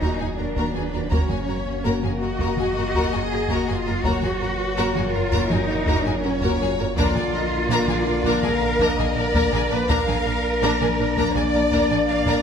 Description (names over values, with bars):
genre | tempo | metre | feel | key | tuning
cinematic, hybrid orchestral and electronic film score | 82 BPM | 4/4 | straight | unclear | A4 = 443 Hz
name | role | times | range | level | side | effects
warm symphonic violin section | melody | 0.0-12.4 s | Ab4 to F5 | -30 LUFS | left 6 dB | none
warm symphonic violin section | second line | 0.0-12.4 s | Ab4 to Bb5 | -28 LUFS | left 4 dB | none
warm symphonic viola section | accompaniment | 0.0-12.4 s | Bb3 to Gb4 | -28 LUFS | equal | none
dark French horn section | sustained chords | 0.0-12.4 s | Bb2 to Gb4 | -27 LUFS | left 3 dB | none
punchy sub bass | bass | 0.0-12.4 s | Eb1 to Bb1 | -31 LUFS | equal | none
rich symphonic cello section | bass | 0.0-12.4 s | Db4 to D5 | -25 LUFS | right 1 dB | none
warm chamber double bass section | bass | 0.0-12.3 s | Bb1 to Gb2 | -29 LUFS | right 4 dB | none
taiko ensemble | drums | 0.0-12.4 s | none | -28 LUFS | equal | none
room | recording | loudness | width
moderate scoring stage reverb, RT60 1.5 s | none | -19 LUFS | side -7 dB against mid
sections
0.0-12.4 A section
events
none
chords
0.0 Ebm; 1.1 Gb; 7.0 Bb